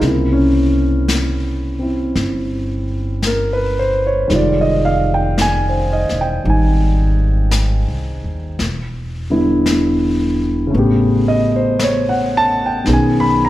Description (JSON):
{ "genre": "jazz ballad", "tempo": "56 BPM", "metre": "4/4", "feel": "swing 68% on 8ths", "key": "unclear", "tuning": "A4 = 440 Hz", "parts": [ { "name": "dark grand piano", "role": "accompaniment", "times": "0.0-13.5 s", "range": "Db3 to B5", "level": "-16 LUFS", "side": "equal", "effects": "none" }, { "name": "upright bass", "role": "bass", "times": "0.0-13.5 s", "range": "Fb1 to Eb2", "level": "-18 LUFS", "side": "equal", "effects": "none" }, { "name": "jazz brush drum kit", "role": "drums", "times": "0.0-13.5 s", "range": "brushed snare drum, hi-hat, snare drum", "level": "-25 LUFS", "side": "left 2 dB", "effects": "none" } ], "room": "moderate concert hall reverb, RT60 2.4 s", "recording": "recorded in a church or concert hall", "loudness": "-14 LUFS", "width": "side -15 dB against mid", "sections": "0.0-13.5 A section", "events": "none", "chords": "0.0 C7b9; 4.3 Fm9; 8.6 Em7; 10.7 A9; 12.9 B69", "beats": "| 0.02 1.09 2.16 3.23 | 4.30 5.37 6.44 7.51 | 8.59 9.65 10.72 11.79 | 12.86" }